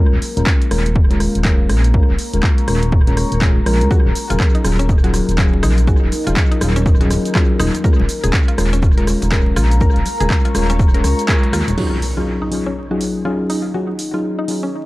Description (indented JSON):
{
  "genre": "deep house",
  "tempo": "122 BPM",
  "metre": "4/4",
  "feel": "swing 61% on 16ths",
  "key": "Eb minor",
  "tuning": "A4 = 440 Hz",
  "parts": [
    { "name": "mellow FM electric piano", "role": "stabs", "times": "0.0-14.7 s", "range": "Gb3 to Bb4", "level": "-21 LUFS", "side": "left 1 dB", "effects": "chorus, low-pass filter, analog delay" },
    { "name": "deep dark ambient pad", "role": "texture", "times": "0.2-14.9 s", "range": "Eb4 to Db6", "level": "-27 LUFS", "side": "left 2 dB", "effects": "chorus, built-in reverb, sidechain pumping" },
    { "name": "smooth synth bass", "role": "bass", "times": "0.1-11.7 s", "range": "Eb1 to Eb2", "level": "-17 LUFS", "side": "equal", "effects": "sidechain pumping" },
    { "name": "punchy analog drum machine", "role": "drums", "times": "0.2-14.6 s", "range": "crash cymbal, handclaps, hi-hat, rim click, shaker", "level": "-24 LUFS", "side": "equal", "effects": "dub echo" },
    { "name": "electronic kick drum", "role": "drums", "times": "0.5-11.4 s", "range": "none", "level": "-14 LUFS", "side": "equal", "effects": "none" },
    { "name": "mallet-like synth pluck", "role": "arpeggios", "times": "3.9-14.7 s", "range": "Db4 to Bb4", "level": "-27 LUFS", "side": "left 1 dB", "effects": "chorus, sidechain pumping, analog delay" },
    { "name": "congas", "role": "percussion", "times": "3.9-11.8 s", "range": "none", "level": "-28 LUFS", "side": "left 2 dB", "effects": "none" },
    { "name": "impact", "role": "sound effects", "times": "11.8-13.7 s", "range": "none", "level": "-24 LUFS", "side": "equal", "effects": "none" }
  ],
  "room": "light reverb",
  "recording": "echo-heavy mix, vinyl crackle",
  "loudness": "-13 LUFS",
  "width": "side -19 dB against mid",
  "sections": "0.0-11.8 A section; 11.8-14.9 B section",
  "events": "band accent 11.3; impact 11.8-13.7; filter sweep on FM electric piano 11.8-14.9",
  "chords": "0.0 Bbm7/Eb; 3.9 Ebm11; 7.8 Bbm7/Eb; 11.8 Ebm11"
}